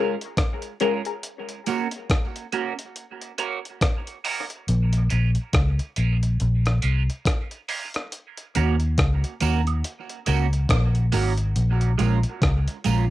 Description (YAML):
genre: dub reggae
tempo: 70 BPM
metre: 4/4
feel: swing 60% on 16ths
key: unclear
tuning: A4 = 440 Hz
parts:
  - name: electric guitar at the edge of break-up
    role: accompaniment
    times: 0.0-13.0 s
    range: Ab3 to Bb4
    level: -28 LUFS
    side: right 8 dB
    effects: phaser, high-pass filter, cassette tape, dub echo
  - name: filtered dub chord stab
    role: stabs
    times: 0.0-1.1 s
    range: Db4 to Bb4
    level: -26 LUFS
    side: left 9 dB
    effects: phaser, cassette tape, dub echo, plate reverb
  - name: breakbeat sampler-style drum kit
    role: drums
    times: 0.2-13.1 s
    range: hi-hat, kick drum, rim click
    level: -25 LUFS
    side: equal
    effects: cassette tape
  - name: tambourine and woodblock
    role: percussion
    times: 1.7-1.9, 8.6-13.1 s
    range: none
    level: -38 LUFS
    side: right 11 dB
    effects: high-pass filter on perc, dub echo
  - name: vintage muted fingered electric bass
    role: bass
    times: 4.7-13.1 s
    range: Ab1 to Eb2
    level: -20 LUFS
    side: equal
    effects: none
room: light reverb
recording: home recording on cassette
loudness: -21 LUFS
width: side -16 dB against mid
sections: 0.0-1.2 A section; 1.2-13.1 B section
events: break 0.0-1.2, 1.2-4.7; part muted 1.2-8.1; filter sweep 1.2-8.1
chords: 0.0 Bbm7; 1.2 Bbm; 4.7 Bbm7; 8.1 Ebm7; 11.6 Bbm7